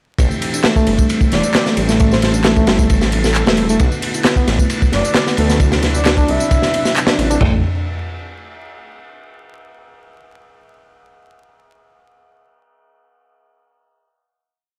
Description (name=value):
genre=breakbeat, breaks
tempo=133 BPM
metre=4/4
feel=straight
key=A dorian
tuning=A4 = 440 Hz
part: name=tonewheel organ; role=sustained chords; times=0.2-7.6 s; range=C3 to A4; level=-29 LUFS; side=equal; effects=chorus vibrato, slow rotary speaker, vintage 12-bit sampler grit, sidechain pumping
part: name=mellow reed electric piano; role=riff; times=0.2-7.6 s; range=G3 to F#4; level=-21 LUFS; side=equal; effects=fast tremolo, vintage 12-bit sampler grit, analog delay
part: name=dark detuned saw bass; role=bass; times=0.2-7.6 s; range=E1 to D2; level=-21 LUFS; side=equal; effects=none
part: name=crunchy breakbeat drum kit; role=drums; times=0.2-7.5 s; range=china cymbal, kick drum, ride cymbal, snare drum, toms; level=-18 LUFS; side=equal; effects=none
part: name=house drum kit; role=drums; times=0.2-7.4 s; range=handclaps, ride cymbal, tambourine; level=-27 LUFS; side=equal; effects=overdrive
part: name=breathy flute-like synth lead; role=melody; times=1.3-6.9 s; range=A4 to E5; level=-26 LUFS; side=equal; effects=chorus, small speaker sound, cassette tape, analog delay
room=light reverb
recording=dry, gritty hardware recording, vinyl crackle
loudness=-15 LUFS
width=mono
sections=0.2-7.4 drop; 7.4-9.2 final chord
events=drop 0.2-7.4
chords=0.2 Am7; 3.8 Bm7; 5.6 D13; 7.4 Am7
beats=| 0.19 0.64 1.09 1.55 | 2.00 2.45 2.90 3.35 | 3.80 4.25 4.70 5.16 | 5.61 6.06 6.51 6.96 | 7.41